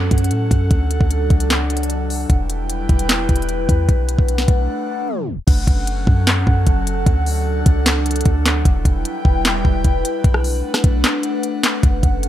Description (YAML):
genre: hip hop, trap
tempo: 151 BPM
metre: 4/4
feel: half-time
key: unclear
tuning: A4 = 440 Hz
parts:
  - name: airy breathy pad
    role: sustained chords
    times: 0.0-12.3 s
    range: F#3 to G5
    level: -22 LUFS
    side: left 1 dB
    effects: chorus, phaser
  - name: clean 808-style bass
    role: bass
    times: 0.0-12.3 s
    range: E1 to A2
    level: -19 LUFS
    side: equal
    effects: none
  - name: trap drum kit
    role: drums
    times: 0.1-12.3 s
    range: crash cymbal, handclaps, hi-hat, kick drum, rim click, snare drum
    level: -17 LUFS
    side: equal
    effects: none
room: little or no reverb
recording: tape stop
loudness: -15 LUFS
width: side -12 dB against mid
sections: 0.0-5.5 A section; 5.5-12.3 B section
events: break 4.7-5.5; tape stop 5.1-5.5; kick muted 11.0-11.8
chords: 0.0 F#m; 0.7 D; 2.3 Em; 3.9 Bm7; 5.5 F#m; 7.1 D; 8.7 Em; 10.2 Bm7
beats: 0.31 | 0.71 1.10 1.50 1.90 | 2.30 2.69 3.09 3.49 | 3.89 4.28 4.68 5.08 | 5.48 5.87 6.27 6.67 | 7.07 7.46 7.86 8.26 | 8.65 9.05 9.45 9.85 | 10.24 10.64 11.04 11.44 | 11.83 12.23